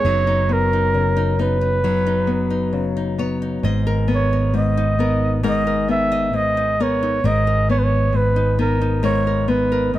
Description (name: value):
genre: acoustic folk-pop ballad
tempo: 67 BPM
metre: 4/4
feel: straight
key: unclear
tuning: A4 = 440 Hz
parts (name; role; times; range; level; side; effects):
- breathy flugelhorn; melody; 0.0-10.0 s; A#4 to E5; -20 LUFS; right 2 dB; none
- nylon-string guitar; accompaniment; 0.0-10.0 s; G#2 to D#5; -21 LUFS; left 3 dB; none
- fingered electric bass; bass; 0.0-10.0 s; F#1 to G#1; -21 LUFS; right 1 dB; none
room: little or no reverb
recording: close, detailed microphones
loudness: -16 LUFS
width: side -14 dB against mid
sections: 0.0-10.0 A section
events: none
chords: 0.0 F#sus4; 3.6 G#madd9